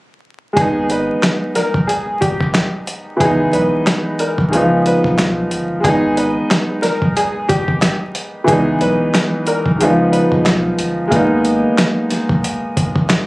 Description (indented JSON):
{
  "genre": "hip hop, boom-bap hip-hop",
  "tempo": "91 BPM",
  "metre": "4/4",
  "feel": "swing 58% on 16ths",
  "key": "G# harmonic minor",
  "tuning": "A4 = 436 Hz",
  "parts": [
    { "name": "warm upright piano", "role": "accompaniment", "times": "0.5-13.3 s", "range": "D#3 to D#4", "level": "-16 LUFS", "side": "equal", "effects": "cassette tape, high-pass filter, low-pass filter" },
    { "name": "clear upright piano", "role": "melody", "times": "0.6-10.6 s", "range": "G4 to B4", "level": "-20 LUFS", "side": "equal", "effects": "high-pass filter, low-pass filter" },
    { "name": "soft dub sub bass", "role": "bass", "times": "0.6-13.2 s", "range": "G1 to C#2", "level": "-22 LUFS", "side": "equal", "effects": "none" },
    { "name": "dusty soul sampler-style drum kit", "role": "drums", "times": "0.6-13.3 s", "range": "handclaps, hi-hat, kick drum, snare drum", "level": "-17 LUFS", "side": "equal", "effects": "none" }
  ],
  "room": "light reverb",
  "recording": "recorded on a phone in the room, club reverb, vinyl crackle, compression",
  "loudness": "-13 LUFS",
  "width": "side -21 dB against mid",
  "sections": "0.6-5.8 A section; 5.8-13.3 B section",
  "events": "none",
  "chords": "0.6 G#m; 3.2 C#m7; 4.5 C#7; 5.8 G#m; 8.5 C#m7; 9.8 C#7; 11.1 G#madd9"
}